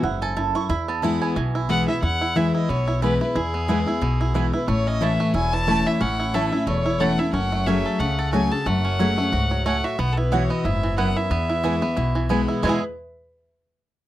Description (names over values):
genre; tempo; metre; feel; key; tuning
bluegrass; 181 BPM; 4/4; swing 56% on 8ths; E major; A4 = 442 Hz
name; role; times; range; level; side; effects
picked steel-string acoustic guitar; accompaniment; 0.0-12.8 s; E2 to G#4; -24 LUFS; left 2 dB; none
bluegrass banjo; arpeggios; 0.0-12.8 s; E3 to A4; -27 LUFS; right 3 dB; none
mandolin; stabs; 0.0-12.8 s; A3 to C#6; -28 LUFS; right 8 dB; none
upright bass; bass; 0.0-12.8 s; E1 to E2; -26 LUFS; equal; none
rich fiddle; melody; 1.7-12.8 s; G#4 to A5; -26 LUFS; left 2 dB; none
room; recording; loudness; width
little or no reverb; dry, close 1970s-style studio recording; -20 LUFS; side -14 dB against mid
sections
0.0-2.0 A section; 2.0-12.6 B section; 12.6-14.0 C section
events
mandolin solo 0.0-2.0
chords
0.0 Bsus4; 0.7 E; 4.7 A; 7.3 F#madd9; 10.0 Bsus4; 11.3 E